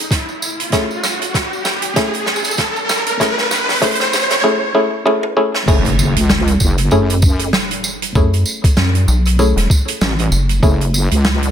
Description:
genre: glitch hop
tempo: 97 BPM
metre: 4/4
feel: swing 57% on 16ths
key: F# minor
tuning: A4 = 438 Hz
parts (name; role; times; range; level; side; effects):
- muted clav; stabs; 0.0-11.5 s; A3 to G#4; -18 LUFS; left 1 dB; sidechain pumping, tape echo
- riser and impact; sound effects; 0.0-8.2 s; none; -20 LUFS; equal; none
- electronic kick drum; drums; 0.1-10.8 s; none; -14 LUFS; equal; none
- huge arena drum kit; drums; 0.1-11.5 s; crash cymbal, hi-hat, rim click, snare drum, tambourine, toms; -19 LUFS; right 2 dB; high-pass filter on hats, high-pass filter on toms, high-pass filter on cymbals, high-pass filter on snare, high-pass filter on perc, high-pass filter on room
- wobble bass; bass; 5.7-11.5 s; F#1 to F#2; -15 LUFS; equal; chorus, tube saturation
- rubbery square bass; bass; 8.2-10.6 s; E1 to F#2; -13 LUFS; equal; none
room: light reverb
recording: high-pass filter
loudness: -13 LUFS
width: side -9 dB against mid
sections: 0.0-5.7 A section; 5.7-11.5 B section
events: build-up 0.0-5.7; drum fill 0.0-4.4, 5.1-5.7; riser 0.0-4.4; filter sweep 0.0-5.7; drop 5.7-11.5; impact 5.7-8.2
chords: 0.0 Amaj7; 5.7 F#m9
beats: 0.11 | 0.73 1.35 1.97 2.59 | 3.20 3.82 4.44 5.06 | 5.68 6.30 6.92 7.53 | 8.15 8.77 9.39 10.01 | 10.63 11.24

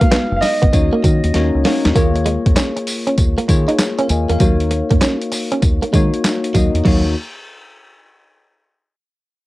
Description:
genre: R&B, new jack swing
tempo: 98 BPM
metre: 4/4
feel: swing 65% on 16ths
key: Eb minor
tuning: A4 = 436 Hz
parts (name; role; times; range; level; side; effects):
- clear concert grand piano; melody; 0.0-1.6 s; Eb5 to F5; -21 LUFS; right 2 dB; cassette tape, analog delay
- bell-like tine electric piano; accompaniment; 0.0-7.1 s; Ab3 to Ab5; -20 LUFS; left 3 dB; analog chorus, cassette tape
- direct-recorded clean electric guitar; riff; 0.0-7.0 s; Gb3 to Eb4; -19 LUFS; right 3 dB; lush chorus, cassette tape
- boom bap sampler-style drum kit; drums; 0.0-7.0 s; crash cymbal, handclaps, hi-hat, kick drum, snare drum, tambourine; -16 LUFS; equal; overdrive, cassette tape
- deep dub fingered electric bass; bass; 0.1-7.1 s; Gb1 to Eb3; -18 LUFS; equal; none
room: little or no reverb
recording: home recording on cassette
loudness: -13 LUFS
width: side -18 dB against mid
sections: 0.0-2.0 A section; 2.0-6.9 B section; 6.9-9.3 C section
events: drum fill 1.3-2.0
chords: 0.0 Abm7; 0.7 Ebm7; 2.0 Bbm7/Eb; 4.4 Ebm7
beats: 0.12 0.73 1.34 | 1.96 2.57 3.18 3.79 | 4.40 5.02 5.63 6.24 | 6.85

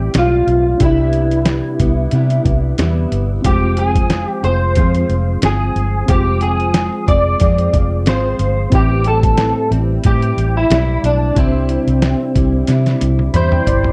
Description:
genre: indie pop, bedroom pop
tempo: 91 BPM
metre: 4/4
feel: swing 55% on 16ths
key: C major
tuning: A4 = 440 Hz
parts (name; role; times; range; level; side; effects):
- electric guitar through a small old amp; melody; 0.0-13.9 s; C4 to D5; -20 LUFS; equal; ensemble chorus, slapback echo
- fingerpicked plugged-in steel-string acoustic guitar; accompaniment; 0.0-13.9 s; A2 to Ab4; -26 LUFS; equal; ensemble chorus, warbly pitch drift
- warbly lo-fi synth keys; accompaniment; 0.0-13.9 s; Ab3 to B5; -28 LUFS; equal; chorus, cassette tape
- vintage muted fingered electric bass; bass; 0.0-13.9 s; F1 to C3; -19 LUFS; equal; none
- trip hop sampler-style drum kit; drums; 0.1-13.9 s; hi-hat, kick drum, snare drum, toms; -19 LUFS; equal; none
room: little or no reverb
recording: dry, close 1970s-style studio recording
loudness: -15 LUFS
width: mono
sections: 0.0-13.9 A section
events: drum fill 12.7-13.9; synth keys fill 13.0-13.9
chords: 0.0 Am7; 0.8 Cmaj7; 3.4 Fm; 8.7 Am7; 11.4 C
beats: 0.15 | 0.81 1.47 2.12 2.79 | 3.44 4.10 4.76 5.42 | 6.08 6.74 7.40 8.06 | 8.72 9.38 10.04 10.70 | 11.36 12.02 12.68 13.34

